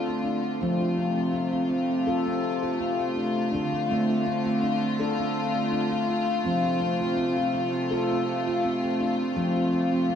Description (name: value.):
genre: world meditative, meditative tuned percussion.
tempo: 82 BPM.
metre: 4/4.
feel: swing 55% on 16ths.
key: F major pentatonic.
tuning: A4 = 440 Hz.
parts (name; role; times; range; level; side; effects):
rich studio string section; sustained chords; 0.0-10.2 s; C3 to F4; -27 LUFS; left 3 dB; none.
handpan; arpeggios; 0.0-10.2 s; D3 to A4; -26 LUFS; right 1 dB; tape echo.
room: wet plate reverb, RT60 2.8 s.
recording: dreamy mix soaked in reverb.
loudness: -23 LUFS.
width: side -8 dB against mid.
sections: 0.0-10.2 A section.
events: none.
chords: 0.0 Dm; 0.6 F; 3.5 Dm; 6.5 F.